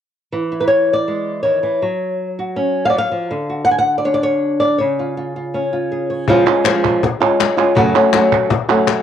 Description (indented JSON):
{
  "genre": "flamenco",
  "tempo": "free time",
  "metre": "none",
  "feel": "none",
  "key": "unclear",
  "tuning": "A4 = 440 Hz",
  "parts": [
    { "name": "flamenco guitar", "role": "melody", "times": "0.3-9.0 s", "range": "F#2 to G#5", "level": "-15 LUFS", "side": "equal", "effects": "cassette tape" },
    { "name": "cajon", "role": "percussion", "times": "6.3-9.0 s", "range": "none", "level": "-20 LUFS", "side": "left 6 dB", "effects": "none" },
    { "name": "palmas hand claps", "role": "percussion", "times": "6.5-9.0 s", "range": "none", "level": "-19 LUFS", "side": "right 4 dB", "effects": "none" }
  ],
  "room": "light reverb, small room ambience",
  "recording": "home recording on cassette",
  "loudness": "-14 LUFS",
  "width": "side -9 dB against mid",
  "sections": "0.3-6.3 A section; 6.3-9.0 B section",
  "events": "none",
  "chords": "0.3 E; 1.8 F#5; 3.3 D; 4.8 C#; 7.8 F#m"
}